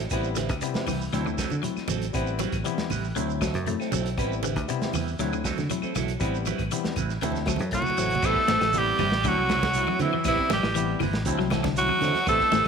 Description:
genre	afrobeat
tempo	118 BPM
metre	4/4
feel	straight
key	A dorian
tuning	A4 = 439 Hz
part	electric guitar at the edge of break-up	stabs	0.0-12.7 s	F#3 to B4	-32 LUFS	right 11 dB	phaser, slapback echo
part	fingered electric bass	bass	0.0-12.7 s	G1 to D3	-30 LUFS	equal	none
part	barky tine electric piano	accompaniment	0.1-12.5 s	F#3 to E4	-34 LUFS	left 12 dB	none
part	crunchy breakbeat drum kit	drums	0.1-12.7 s	crash cymbal, hi-hat, kick drum, snare drum	-33 LUFS	equal	none
part	claves	percussion	0.1-12.7 s	none	-41 LUFS	left 14 dB	none
part	congas	percussion	0.1-12.7 s	none	-34 LUFS	right 11 dB	none
part	shekere	percussion	0.1-12.7 s	none	-38 LUFS	right 10 dB	none
part	electric guitar at the edge of break-up	arpeggios	0.4-12.7 s	C3 to A3	-32 LUFS	left 11 dB	phaser
part	raspy tenor saxophone	melody	7.7-12.7 s	E4 to A4	-24 LUFS	equal	none
part	bright alto saxophone	second line	7.7-12.7 s	E3 to A3	-31 LUFS	right 11 dB	none
room	moderate echo chamber reverb, RT60 1.4 s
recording	1960s-style stereo with parts hard left and right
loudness	-23 LUFS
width	side -6 dB against mid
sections	0.0-8.2 A section; 8.2-12.7 B section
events	drum fill 7.2-8.2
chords	0.1 Am9; 1.1 D9; 2.1 Am9; 3.2 D9; 4.2 Am9; 5.2 D9; 6.2 Am9; 7.2 D9; 8.2 Am9; 9.2 D9; 10.3 Am9; 11.3 D9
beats	| 0.12 0.63 1.13 1.64 | 2.15 2.65 3.16 3.67 | 4.18 4.68 5.19 5.70 | 6.20 6.71 7.22 7.72 | 8.23 8.74 9.24 9.75 | 10.25 10.76 11.26 11.77 | 12.27

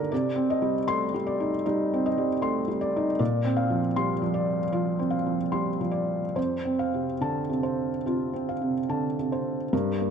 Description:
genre	neoclassical minimalist piano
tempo	69-78 BPM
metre	4/4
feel	rubato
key	unclear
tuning	A4 = 440 Hz
part	felt-muted upright piano	solo	0.0-10.1 s	F2 to C6	-24 LUFS	equal	none
room	moderate concert hall reverb, RT60 1.9 s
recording	dark, warm production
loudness	-24 LUFS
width	side -7 dB against mid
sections	0.0-9.7 A section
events	none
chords	0.1 Cmadd9; 3.2 Bbadd9; 6.4 F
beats	| 0.11 0.89 1.66 2.43 | 3.20 3.97 4.74 5.53 | 6.37 7.23 8.07 8.90 | 9.72

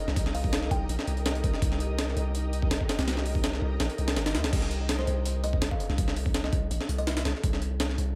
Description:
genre	drum and bass, jungle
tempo	165 BPM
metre	4/4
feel	straight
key	unclear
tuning	A4 = 440 Hz
part	kalimba	melody	0.0-1.2, 5.0-7.5 s	C5 to G5	-40 LUFS	equal	dub echo
part	ethereal airy pad	sustained chords	0.0-4.5 s	Eb4 to Eb5	-41 LUFS	equal	ensemble chorus, built-in reverb, vintage 12-bit sampler grit
part	long sustained 808-style bass	bass	0.1-8.2 s	G1 to Eb2	-32 LUFS	equal	tube saturation
part	jungle sampler-style drum kit	drums	0.1-8.1 s	crash cymbal, hi-hat, kick drum, snare drum	-31 LUFS	equal	overdrive
room	little or no reverb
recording	none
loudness	-28 LUFS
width	mono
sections	0.0-4.5 A section; 4.5-8.2 A section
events	drop 0.0-4.5, 4.5-8.2; kick drops out 3.8-4.5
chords	0.0 Eb; 4.5 N.C.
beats	| 0.16 0.53 0.89 1.25 | 1.62 1.98 2.35 2.71 | 3.07 3.44 3.80 4.16 | 4.53 4.89 5.25 5.62 | 5.98 6.34 6.71 7.07 | 7.44 7.80

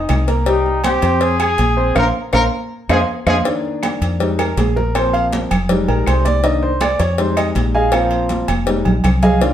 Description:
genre	latin, salsa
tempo	161 BPM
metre	4/4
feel	straight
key	unclear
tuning	A4 = 439 Hz
part	clear grand piano	accompaniment	0.0-9.5 s	Eb3 to Ab6	-18 LUFS	equal	none
part	deep dub fingered electric bass	bass	0.0-9.5 s	F1 to F2	-19 LUFS	left 1 dB	none
part	claves	percussion	0.1-9.2 s	none	-30 LUFS	left 3 dB	none
part	congas	percussion	0.1-9.5 s	none	-22 LUFS	right 1 dB	none
part	cowbell	percussion	0.1-9.5 s	none	-25 LUFS	left 2 dB	none
part	timbales and agogo bells	percussion	0.1-9.2 s	none	-25 LUFS	right 5 dB	none
part	warm trumpet	melody	0.5-3.4 s	Eb4 to Bb4	-20 LUFS	left 2 dB	plate reverb
room	wet studio reverb, RT60 0.7 s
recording	heard from further back in the room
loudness	-14 LUFS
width	side -10 dB against mid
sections	0.0-3.5 A section; 3.5-9.5 B section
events	band accent 2.0-3.5; drum fill 2.3-3.5, 8.3-9.4; grand piano solo 3.5-9.5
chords	0.5 Cm; 1.2 Fm; 2.0 Bbsus2; 2.7 Fm7; 3.5 Bbadd11; 4.2 Fm7; 5.0 Bbsus2; 5.7 Fm7; 6.4 Cm7; 7.2 Fm7; 7.9 Bbsus2; 8.7 Fm7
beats	0.10 | 0.47 0.85 1.22 1.59 | 1.97 2.34 2.71 3.09 | 3.46 3.83 4.21 4.58 | 4.95 5.32 5.70 6.07 | 6.44 6.81 7.18 7.56 | 7.93 8.30 8.67 9.04 | 9.42

